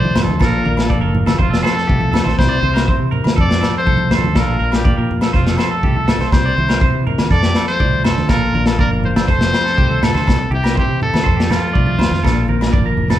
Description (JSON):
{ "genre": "highlife guitar band", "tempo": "122 BPM", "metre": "4/4", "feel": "straight", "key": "F major", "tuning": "A4 = 439 Hz", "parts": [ { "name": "clear trumpet", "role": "melody", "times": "0.0-13.0 s", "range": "F4 to D5", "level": "-21 LUFS", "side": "left 1 dB", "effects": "none" }, { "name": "clean electric guitar", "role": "accompaniment", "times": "0.0-13.2 s", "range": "F2 to A4", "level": "-22 LUFS", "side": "left 3 dB", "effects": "none" }, { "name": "clean electric guitar", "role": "arpeggios", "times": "0.0-13.2 s", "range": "C4 to D5", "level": "-24 LUFS", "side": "right 6 dB", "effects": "none" }, { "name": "fingered electric bass", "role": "bass", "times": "0.0-13.2 s", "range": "F1 to C3", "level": "-20 LUFS", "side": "equal", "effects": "none" }, { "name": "congas", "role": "percussion", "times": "0.1-13.2 s", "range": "none", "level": "-24 LUFS", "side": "right 1 dB", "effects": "none" }, { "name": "crunchy breakbeat drum kit", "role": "drums", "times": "0.2-13.2 s", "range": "kick drum, snare drum", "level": "-17 LUFS", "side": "equal", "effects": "none" }, { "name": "agogo bells", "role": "percussion", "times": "0.2-13.2 s", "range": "none", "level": "-29 LUFS", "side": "left 5 dB", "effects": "none" } ], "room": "moderate large studio reverb, RT60 0.9 s", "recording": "band playing live in one room", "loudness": "-13 LUFS", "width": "side -12 dB against mid", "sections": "0.0-13.2 A section", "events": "drum fill 12.9-13.2", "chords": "0.4 Bb; 1.4 F; 2.4 C; 3.4 F; 4.4 Bb; 5.3 F; 6.3 C; 7.3 F; 8.3 Bb; 9.3 F; 10.3 C; 11.3 F; 12.2 Bb" }